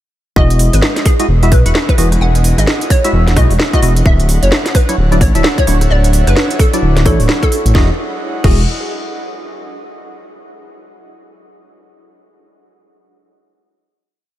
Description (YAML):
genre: UK garage, two-step garage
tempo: 130 BPM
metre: 4/4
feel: swing 60% on 16ths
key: E major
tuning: A4 = 436 Hz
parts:
  - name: hollow square pluck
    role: melody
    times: 0.4-8.6 s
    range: G#4 to F#5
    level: -21 LUFS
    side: equal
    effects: ensemble chorus, tape echo
  - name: percussive organ stab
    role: stabs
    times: 0.4-8.6 s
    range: F#3 to F#5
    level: -20 LUFS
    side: equal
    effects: analog chorus, ping-pong delay
  - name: dark detuned saw bass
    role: bass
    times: 0.4-8.7 s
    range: D1 to B1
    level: -12 LUFS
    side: equal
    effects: none
  - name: electronic kick drum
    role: drums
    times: 0.4-8.6 s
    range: none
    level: -12 LUFS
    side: equal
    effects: none
  - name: airy breathy pad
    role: texture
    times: 1.3-9.6 s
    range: D4 to F#5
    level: -26 LUFS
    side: right 2 dB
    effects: chorus, sidechain pumping
  - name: garage drum kit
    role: drums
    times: 0.5-8.6 s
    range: crash cymbal, hi-hat, rim click, snare drum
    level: -18 LUFS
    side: equal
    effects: none
room: light reverb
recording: none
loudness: -10 LUFS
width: side -13 dB against mid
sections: 0.4-7.7 drop; 7.7-9.6 final chord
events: drop 0.4-7.7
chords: 0.4 Emaj9; 4.1 Dmaj9; 7.7 Emaj9